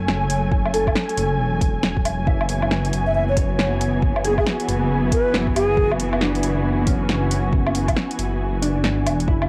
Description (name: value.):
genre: future garage.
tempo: 137 BPM.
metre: 4/4.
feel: swing 62% on 16ths.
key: unclear.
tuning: A4 = 440 Hz.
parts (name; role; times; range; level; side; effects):
muted studio string section; sustained chords; 0.0-9.5 s; E3 to G#5; -28 LUFS; equal; sidechain pumping, cassette tape.
dark detuned saw bass; bass; 0.0-9.5 s; E1 to G#1; -26 LUFS; equal; transformer saturation, sidechain pumping.
deep house drum kit; drums; 0.1-9.5 s; hi-hat, snare drum, woodblock; -26 LUFS; equal; studio reverb, cassette tape.
electronic kick drum; drums; 0.5-9.4 s; none; -24 LUFS; equal; studio reverb, cassette tape.
mellow electric guitar; accompaniment; 0.7-9.5 s; C#4 to E5; -29 LUFS; equal; ensemble chorus, sidechain pumping, cassette tape, tape echo.
breathy mellow silver concert flute; melody; 3.1-5.9 s; G#4 to E5; -26 LUFS; equal; cassette tape, tape echo.
room: light reverb, digital ambience.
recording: home recording on cassette.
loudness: -20 LUFS.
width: mono.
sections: 0.0-9.5 A section.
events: kick drops out 8.4-9.3.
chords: 0.0 F#m9; 2.3 E/F#.